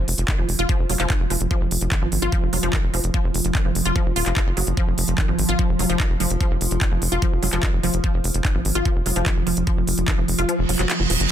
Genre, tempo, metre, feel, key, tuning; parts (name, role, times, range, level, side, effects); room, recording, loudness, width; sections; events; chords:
psychedelic trance; 147 BPM; 4/4; straight; F phrygian; A4 = 440 Hz
evolving wavetable pad; sustained chords; 0.2-11.3 s; F3; -28 LUFS; right 2 dB; chorus, built-in reverb, sidechain pumping
tight sequencer bass; bass; 0.0-11.3 s; Eb1 to Ab1; -23 LUFS; equal
techno drum kit; drums; 0.1-11.3 s; handclaps, hi-hat; -26 LUFS; right 1 dB
wide unison pluck; riff; 0.3-11.1 s; Eb3 to F4; -26 LUFS; moving between left 3 dB and right 3 dB; auto-pan, sidechain pumping, digital delay
electronic kick drum; drums; 0.3-10.2 s; -22 LUFS; equal
reverse cymbal; sound effects; 10.6-11.3 s; -25 LUFS; right 5 dB
little or no reverb; dense, heavily limited modern master; -18 LUFS; side -10 dB against mid
0.0-11.3 A section
kick drops out 10.5-11.3; reverse cymbal 10.6-11.3